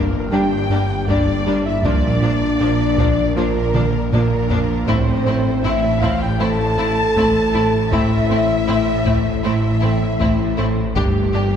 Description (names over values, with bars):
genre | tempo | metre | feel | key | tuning
cinematic, hybrid orchestral and electronic film score | 79 BPM | 4/4 | straight | A phrygian | A4 = 440 Hz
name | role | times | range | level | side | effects
bright symphonic violin section | melody | 0.0-11.4 s | D4 to G4 | -28 LUFS | left 5 dB | none
pure sine lead | melody | 0.0-11.6 s | G4 to A5 | -27 LUFS | right 3 dB | chorus, phaser, digital delay
warm symphonic violin section | second line | 0.0-11.6 s | G4 to A5 | -26 LUFS | left 2 dB | none
clear studio viola section | accompaniment | 0.0-11.4 s | F3 to D4 | -27 LUFS | equal | none
glassy FM pad | sustained chords | 0.0-11.6 s | E3 to D5 | -26 LUFS | left 2 dB | ensemble chorus, built-in reverb
mellow French horn section | sustained chords | 0.0-11.6 s | G3 to A4 | -23 LUFS | left 2 dB | none
harp-like synth pluck | arpeggios | 0.0-11.2 s | G3 to Bb4 | -27 LUFS | left 3 dB | none
rubbery square bass | riff | 0.0-11.6 s | G2 to Bb3 | -25 LUFS | right 2 dB | none
clear symphonic cello section | bass | 0.0-11.6 s | G2 to Bb2 | -26 LUFS | right 3 dB | none
rich symphonic double bass section | bass | 0.0-11.6 s | G1 to Bb1 | -26 LUFS | right 2 dB | none
snarling distorted saw bass | bass | 0.0-11.6 s | G1 to Bb1 | -27 LUFS | equal | distortion
taiko ensemble | drums | 1.1-11.6 s | none | -25 LUFS | equal | none
room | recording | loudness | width
wet scoring stage reverb, RT60 2.0 s | heard from further back in the room | -15 LUFS | side -8 dB against mid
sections
0.0-11.6 A section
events
drum fill 3.7-4.9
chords
0.0 Gm; 1.8 Bb; 4.9 Am; 11.0 Gm